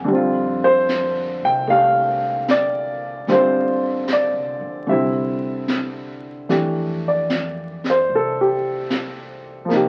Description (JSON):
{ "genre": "jazz ballad", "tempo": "75 BPM", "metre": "4/4", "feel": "swing 68% on 8ths", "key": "F major", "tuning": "A4 = 440 Hz", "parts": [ { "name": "warm upright piano", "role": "accompaniment", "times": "0.0-9.9 s", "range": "Db3 to Ab5", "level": "-20 LUFS", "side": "equal", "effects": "none" }, { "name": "upright bass", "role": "bass", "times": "0.0-9.9 s", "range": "A1 to C3", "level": "-38 LUFS", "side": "equal", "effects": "none" }, { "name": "jazz brush drum kit", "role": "drums", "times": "0.1-9.9 s", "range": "brushed snare drum, hi-hat, snare drum", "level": "-28 LUFS", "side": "equal", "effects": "none" } ], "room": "moderate studio reverb, RT60 0.6 s", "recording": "very old 78 rpm record, vinyl crackle", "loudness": "-20 LUFS", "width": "mono", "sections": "0.0-6.5 A section; 6.5-9.9 B section", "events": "none", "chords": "0.1 F69; 4.9 C; 6.5 F69" }